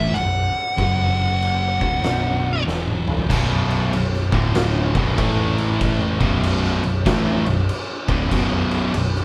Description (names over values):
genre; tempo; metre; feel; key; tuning
stoner and doom metal; 96 BPM; 4/4; swing 63% on 8ths; B minor; A4 = 439 Hz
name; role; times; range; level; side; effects
fuzz lead guitar; melody; 0.0-2.6 s; E5 to F#5; -25 LUFS; equal; distortion
thick fuzz guitar; riff; 0.0-9.2 s; B1 to A3; -27 LUFS; equal; distortion
thick fuzz guitar; riff; 0.0-9.2 s; B1 to A3; -29 LUFS; equal; none
picked electric bass; bass; 0.0-9.2 s; B0 to A1; -27 LUFS; equal; overdrive
oversized low-tuned drum kit; drums; 0.2-9.2 s; crash cymbal, kick drum, snare drum, toms; -26 LUFS; equal; none
cranked stack guitar; riff; 3.3-9.2 s; B1 to A3; -27 LUFS; equal; overdrive
room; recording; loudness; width
light reverb; band playing live in one room; -20 LUFS; mono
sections
0.0-3.3 A section; 3.3-9.2 B section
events
drum fill 2.7-3.3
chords
0.0 B5; 0.8 F#5; 1.7 Bm; 2.7 E5; 3.3 B5; 4.2 D5; 4.9 B5; 5.2 A5; 6.1 Bm